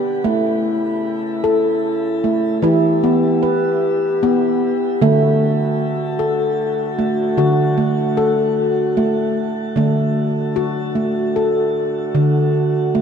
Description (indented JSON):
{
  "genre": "world meditative",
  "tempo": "76 BPM",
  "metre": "3/4",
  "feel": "swing 55% on 16ths",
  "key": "D major",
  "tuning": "A4 = 441 Hz",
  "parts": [
    { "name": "warm French horn section", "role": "sustained chords", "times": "0.0-13.0 s", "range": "C#3 to G4", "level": "-20 LUFS", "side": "equal", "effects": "stereo widening, shimmer reverb" },
    { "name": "handpan", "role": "arpeggios", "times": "0.0-13.0 s", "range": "D3 to B4", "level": "-17 LUFS", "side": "equal", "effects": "shimmer reverb" }
  ],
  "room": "wet plate reverb, RT60 3.1 s",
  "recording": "dreamy mix soaked in reverb",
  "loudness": "-15 LUFS",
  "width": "side -7 dB against mid",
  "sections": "0.0-9.8 A section; 9.8-13.0 B section",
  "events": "none",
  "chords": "0.2 A; 2.6 Em; 5.0 D"
}